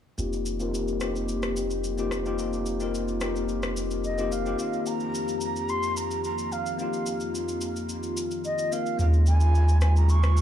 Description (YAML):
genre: amapiano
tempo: 109 BPM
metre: 4/4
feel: straight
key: F minor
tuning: A4 = 439 Hz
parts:
  - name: bell-like tine electric piano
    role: accompaniment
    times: 0.2-10.4 s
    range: Bb3 to Bb4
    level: -30 LUFS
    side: left 5 dB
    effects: slow stereo tremolo, low-pass filter, dub echo
  - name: hollow soft pad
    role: sustained chords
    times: 0.2-10.4 s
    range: F2 to G4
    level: -34 LUFS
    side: equal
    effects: chorus, low-pass filter
  - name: punchy sub bass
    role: bass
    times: 0.2-4.5, 9.0-10.4 s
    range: F1 to Eb2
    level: -24 LUFS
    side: equal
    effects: none
  - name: electronic shaker and rim click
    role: drums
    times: 0.2-10.4 s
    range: none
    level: -37 LUFS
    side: left 1 dB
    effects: none
  - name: breathy mellow concert flute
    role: melody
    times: 4.0-10.4 s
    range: Eb5 to Db6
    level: -31 LUFS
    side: right 2 dB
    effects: dub echo
room: little or no reverb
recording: echo-heavy mix, small room ambience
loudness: -24 LUFS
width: side -10 dB against mid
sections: 0.2-4.6 A section; 4.6-10.4 B section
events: filter sweep 0.2-4.6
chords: 0.2 F9sus4; 9.0 Eb9sus4